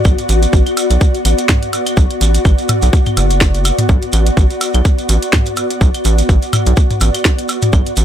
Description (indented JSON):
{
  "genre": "minimal techno",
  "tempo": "125 BPM",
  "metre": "4/4",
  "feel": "swing 56% on 16ths",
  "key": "B minor",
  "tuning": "A4 = 440 Hz",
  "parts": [
    { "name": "shekere", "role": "percussion", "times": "0.0-8.0 s", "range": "none", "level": "-26 LUFS", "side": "right 4 dB", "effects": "none" },
    { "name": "ethereal airy pad", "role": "texture", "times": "0.0-8.0 s", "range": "B3 to F#5", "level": "-18 LUFS", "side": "left 1 dB", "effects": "ensemble chorus, built-in reverb, sidechain pumping" },
    { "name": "rubbery square bass", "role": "bass", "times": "0.1-8.0 s", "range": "F#1 to B1", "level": "-13 LUFS", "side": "equal", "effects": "sidechain pumping" },
    { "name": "electronic kick drum", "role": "drums", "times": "0.1-7.8 s", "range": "none", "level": "-12 LUFS", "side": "equal", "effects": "overdrive, small room ambience" },
    { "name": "electronic claves, woodblock and toms", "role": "percussion", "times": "0.1-7.8 s", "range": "none", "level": "-20 LUFS", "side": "left 1 dB", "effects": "small room ambience, ping-pong delay" },
    { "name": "garage drum kit", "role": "drums", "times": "0.2-8.0 s", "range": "hi-hat, snare drum", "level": "-18 LUFS", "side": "right 1 dB", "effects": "overdrive, small room ambience" }
  ],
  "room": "little or no reverb",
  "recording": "none",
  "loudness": "-11 LUFS",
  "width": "side -10 dB against mid",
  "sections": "0.0-8.0 A section",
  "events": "none",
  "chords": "0.0 Bm"
}